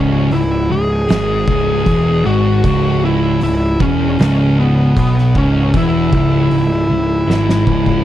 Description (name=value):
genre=stoner and doom metal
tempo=78 BPM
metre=4/4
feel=straight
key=C# minor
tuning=A4 = 440 Hz
part: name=fuzz lead guitar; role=melody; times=0.0-8.0 s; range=B3 to G#4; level=-17 LUFS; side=equal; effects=distortion, slapback echo
part: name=thick fuzz guitar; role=riff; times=0.0-8.0 s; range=C#2 to B2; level=-15 LUFS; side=equal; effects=distortion
part: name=fuzz picked electric bass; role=bass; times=0.0-8.0 s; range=C#1 to B1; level=-19 LUFS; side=equal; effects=overdrive
part: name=oversized low-tuned drum kit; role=drums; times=0.3-8.0 s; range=hi-hat, kick drum, snare drum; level=-18 LUFS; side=equal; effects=none
room=studio reverb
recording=dry, close 1970s-style studio recording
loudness=-12 LUFS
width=side -12 dB against mid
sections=0.0-8.0 A section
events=drum fill 7.3-8.0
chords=0.0 C#m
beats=0.32 1.10 1.87 | 2.64 3.42 4.19 4.97 | 5.74 6.51 7.29